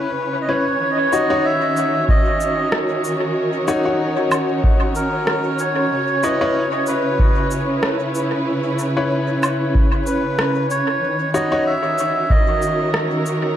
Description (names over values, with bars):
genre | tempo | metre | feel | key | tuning
ambient dub | 94 BPM | 4/4 | swing 55% on 16ths | unclear | A4 = 440 Hz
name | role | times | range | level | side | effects
melodica | melody | 0.0-12.9 s | A#4 to E5 | -22 LUFS | right 1 dB | dub echo
dark studio string section | sustained chords | 0.0-13.6 s | C#3 to C#5 | -22 LUFS | right 1 dB | none
bright upright piano | stabs | 0.0-11.7 s | C#4 to C#5 | -24 LUFS | left 3 dB | dub echo
electronic cabasa, rim click and woodblock | drums | 0.5-13.4 s | none | -26 LUFS | equal | low-pass filter on perc, low-pass filter on snare, low-pass filter on room, dub echo
electronic kick drum | drums | 2.1-12.4 s | none | -17 LUFS | equal | none
room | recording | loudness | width
moderate spring reverb, RT60 2.5 s | vinyl crackle | -16 LUFS | side -10 dB against mid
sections
0.8-13.6 A section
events
none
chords
0.0 C#m7; 0.8 D#m7; 5.9 C#m7; 11.0 D#m7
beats
0.17 | 0.81 1.45 2.08 2.72 | 3.36 4.00 4.64 5.28 | 5.92 6.55 7.19 7.83 | 8.47 9.11 9.74 10.38 | 11.02 11.66 12.30 12.94